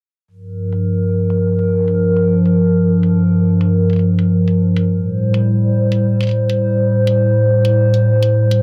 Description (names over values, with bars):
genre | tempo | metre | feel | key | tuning
glitch hop | 104 BPM | 4/4 | swing 57% on 16ths | G minor | A4 = 441 Hz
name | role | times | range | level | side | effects
warbly tape-like pad | sustained chords | 0.5-8.6 s | G2 to C5 | -15 LUFS | equal | chorus, built-in reverb
electronic hi-hat | drums | 0.7-8.6 s | none | -34 LUFS | equal | overdrive, low-pass filter on hats, low-pass filter on room
room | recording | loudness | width
wet studio reverb, RT60 0.6 s | dense, heavily limited modern master | -15 LUFS | mono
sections
0.3-8.6 A section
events
filter sweep on drum 0.3-8.6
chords
0.3 Gm7; 4.9 Am7